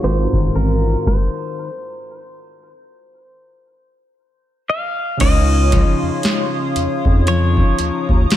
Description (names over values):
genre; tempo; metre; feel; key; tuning
contemporary R&B; 58 BPM; 4/4; swing 58% on 16ths; Db major; A4 = 436 Hz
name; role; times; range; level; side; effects
direct-recorded clean electric guitar; melody; 0.0-8.4 s; Bb4 to F5; -24 LUFS; left 1 dB; wide subtle chorus, analog delay
warm analog keys; accompaniment; 0.0-8.4 s; Ab2 to Db5; -23 LUFS; right 3 dB; chorus, analog delay
hollow soft pad; sustained chords; 0.0-8.4 s; Bb4 to Eb6; -28 LUFS; left 1 dB; chorus
nylon-string guitar; arpeggios; 0.0-8.4 s; Ab2 to Gb4; -24 LUFS; left 7 dB; analog delay
round analog bass; bass; 0.0-8.3 s; Ab1 to F2; -17 LUFS; equal; none
booming analog drum machine; drums; 0.0-8.4 s; crash cymbal, hi-hat, kick drum, rim click, snare drum; -18 LUFS; equal; none
room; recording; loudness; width
light reverb; echo-heavy mix, low-pass filter; -14 LUFS; side -12 dB against mid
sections
0.0-5.2 A section; 5.2-8.4 B section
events
filter sweep 0.0-5.2; stop 1.1-5.2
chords
0.0 Ab13; 5.2 Dbmaj9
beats
0.03 | 1.06 2.10 3.13 4.17 | 5.20 6.24 7.27 8.30